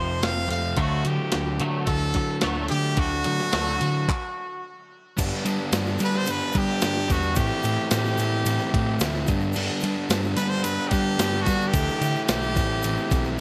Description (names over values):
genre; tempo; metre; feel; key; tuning
indie rock; 110 BPM; 4/4; straight; G major from 5.2 s; A4 = 437 Hz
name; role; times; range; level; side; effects
brilliant trumpet; melody; 0.0-13.3 s; F#4 to F5; -30 LUFS; equal; delay
overdriven electric guitar; riff; 0.0-13.4 s; G2 to E4; -30 LUFS; equal; none
twangy electric guitar; riff; 0.0-4.1 s; F2 to A3; -36 LUFS; equal; ensemble chorus, delay
hollow-body short-scale picked electric bass; bass; 0.0-13.4 s; F1 to G3; -30 LUFS; equal; none
crisp 8-bit digital drum machine; drums; 0.2-13.2 s; crash cymbal, handclaps, hi-hat, kick drum, ride cymbal, snare drum; -30 LUFS; equal; gated reverb
egg shaker; percussion; 5.2-13.3 s; none; -42 LUFS; equal; none
room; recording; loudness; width
light reverb; bright 1980s-style digital production; -24 LUFS; mono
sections
0.0-5.2 A section; 5.2-13.4 B section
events
stop 4.1-5.2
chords
0.0 F; 0.8 D; 5.2 G; 7.4 Am7; 9.3 G; 11.7 Dsus2; 12.6 Am7